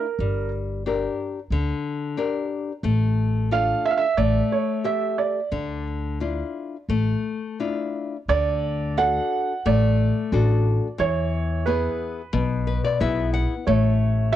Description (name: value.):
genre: fado-style ballad.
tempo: 90 BPM.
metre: 4/4.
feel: rubato.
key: D harmonic minor, D major from 8.3 s.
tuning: A4 = 438 Hz.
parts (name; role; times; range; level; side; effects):
felt-muted upright piano; melody; 0.0-14.4 s; Bb4 to F#5; -24 LUFS; right 7 dB; cassette tape, plate reverb.
nylon-string guitar; accompaniment; 0.0-14.4 s; B2 to F#5; -26 LUFS; left 6 dB; cassette tape.
upright bass; bass; 0.2-14.4 s; G1 to E2; -23 LUFS; equal; tube saturation.
room: light reverb.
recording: home recording on cassette.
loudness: -21 LUFS.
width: side -12 dB against mid.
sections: 0.0-8.3 A section; 8.3-14.4 B section.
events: nylon-string guitar fill 12.3-13.7.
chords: 0.2 Gm; 2.8 Dm/A; 4.2 A5; 5.5 Dmadd9; 8.3 D; 11.0 E; 13.7 A.